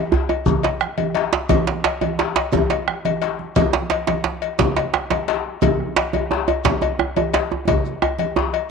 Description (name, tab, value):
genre	west african traditional, West African drum ensemble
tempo	116 BPM (dotted quarters)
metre	12/8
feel	straight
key	none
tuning	none
part	bombo	percussion	0.1-8.6 s	none	-27 LUFS	right 1 dB	none
part	djembe	percussion	0.1-8.5 s	none	-24 LUFS	left 8 dB	none
part	djembe	percussion	0.1-8.5 s	none	-21 LUFS	right 6 dB	none
part	cowbell	percussion	0.3-8.7 s	none	-25 LUFS	left 13 dB	none
part	congas	percussion	0.5-8.6 s	none	-25 LUFS	right 8 dB	none
part	shekere	percussion	0.5-7.9 s	none	-29 LUFS	left 5 dB	none
room	moderate spring reverb, RT60 2.7 s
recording	1960s-style stereo with parts hard left and right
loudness	-18 LUFS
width	side -5 dB against mid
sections	0.0-8.7 A section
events	drum fill 7.7-8.7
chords	none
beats	0.46 0.98 | 1.50 2.01 2.53 3.04 | 3.56 4.08 4.59 5.11 | 5.62 6.13 6.65 7.16 | 7.68 8.19